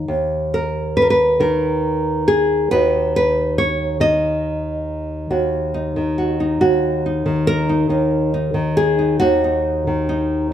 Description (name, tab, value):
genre	folk, solo fingerstyle acoustic guitar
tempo	46 BPM (dotted quarters)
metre	6/8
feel	straight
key	Eb minor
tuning	A4 = 439 Hz
part	nylon-string guitar	solo	0.0-10.5 s	Eb2 to Eb5	-16 LUFS	equal	none
room	light reverb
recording	none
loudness	-16 LUFS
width	side -10 dB against mid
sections	0.0-5.3 A section; 5.3-10.5 B section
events	none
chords	0.0 N.C.; 2.7 Ebm